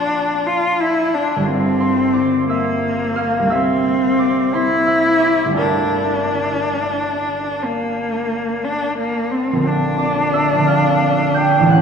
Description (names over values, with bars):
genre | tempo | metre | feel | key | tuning
classical, impressionist duo for cello and harp | 59 BPM (dotted quarters) | 12/8 | rubato | G dorian | A4 = 440 Hz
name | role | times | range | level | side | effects
warm cello | melody | 0.0-11.8 s | Bb3 to F4 | -17 LUFS | left 2 dB | none
concert harp | accompaniment | 0.0-11.8 s | G1 to G6 | -19 LUFS | right 2 dB | none
room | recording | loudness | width
wet cathedral reverb, RT60 5.4 s | recorded in a church or concert hall | -15 LUFS | side -6 dB against mid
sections
0.0-11.8 A section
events
none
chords
0.0 Bbmaj9; 1.5 Gm7; 3.5 C9; 5.6 Gm9; 9.7 Bbadd9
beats
0.46 | 1.48 2.51 3.53 4.55 | 5.58 6.59 7.63 8.64 | 9.66 10.69 11.71